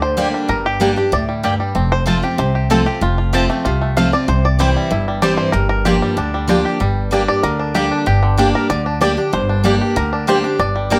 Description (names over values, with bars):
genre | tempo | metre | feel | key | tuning
bluegrass | 190 BPM | 4/4 | straight | G dorian | A4 = 441 Hz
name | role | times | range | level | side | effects
bluegrass banjo | melody | 0.0-11.0 s | D3 to F5 | -22 LUFS | equal | none
picked steel-string acoustic guitar | accompaniment | 0.0-11.0 s | F2 to G4 | -21 LUFS | equal | none
upright bass | bass | 0.0-11.0 s | F1 to D2 | -22 LUFS | equal | none
mandolin | stabs | 0.2-11.0 s | Bb3 to A5 | -24 LUFS | equal | none
room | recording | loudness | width
light reverb | none | -16 LUFS | mono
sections
0.0-6.8 A section; 6.8-11.0 A section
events
five-string banjo solo 0.0-11.0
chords
0.0 Gm; 1.8 F; 4.3 C; 5.5 Gm7; 6.8 Gm